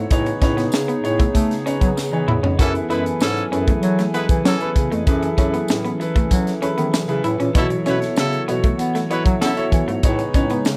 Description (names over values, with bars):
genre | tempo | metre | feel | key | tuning
polished 1980s jazz-funk pop | 97 BPM | 4/4 | straight | F# dorian | A4 = 440 Hz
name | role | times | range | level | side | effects
warm concert grand piano | accompaniment | 0.0-10.8 s | D#4 to C#5 | -26 LUFS | equal | subtle chorus
hollow soft pad | sustained chords | 0.0-10.8 s | C#3 to G#5 | -29 LUFS | equal | chorus
electric guitar through a small old amp | riff | 0.0-10.6 s | A3 to F#4 | -28 LUFS | equal | lush chorus
mellow bass clarinet | bass | 0.0-10.8 s | E2 to B3 | -25 LUFS | equal | none
crisp fusion drum kit | drums | 0.1-10.8 s | hi-hat, kick drum, snare drum, toms | -22 LUFS | equal | none
tambourine | percussion | 0.7-10.8 s | none | -38 LUFS | equal | none
warm horn section | second line | 2.6-9.7 s | E3 to B4 | -26 LUFS | equal | none
room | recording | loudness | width
little or no reverb | none | -19 LUFS | mono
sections
0.0-10.8 A section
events
drum fill 2.0-2.6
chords
0.1 Amaj9#11; 2.6 F#m11; 7.6 B7sus4; 10.0 Amaj9#11